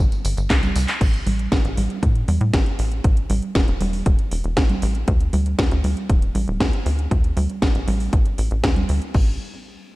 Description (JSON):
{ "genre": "italo disco", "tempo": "118 BPM", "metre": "4/4", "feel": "straight", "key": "A minor", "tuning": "A4 = 440 Hz", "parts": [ { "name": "tight sequencer bass", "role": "bass", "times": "0.0-9.4 s", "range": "D1 to A2", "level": "-22 LUFS", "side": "equal", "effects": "none" }, { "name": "house drum kit", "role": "drums", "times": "0.1-9.2 s", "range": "congas, crash cymbal, handclaps, hi-hat, snare drum, tambourine", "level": "-25 LUFS", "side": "right 1 dB", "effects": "studio reverb" }, { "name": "electronic kick drum", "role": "drums", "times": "0.5-9.2 s", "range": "none", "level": "-19 LUFS", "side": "equal", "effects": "studio reverb" } ], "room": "light reverb", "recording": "dark, warm production", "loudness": "-18 LUFS", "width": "side -19 dB against mid", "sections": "0.0-1.0 A section; 1.0-9.1 B section", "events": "drum fill 0.5-1.0", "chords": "none", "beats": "0.50 | 1.01 1.52 2.03 2.54 | 3.04 3.55 4.06 4.57 | 5.08 5.59 6.09 6.60 | 7.11 7.62 8.13 8.64 | 9.14" }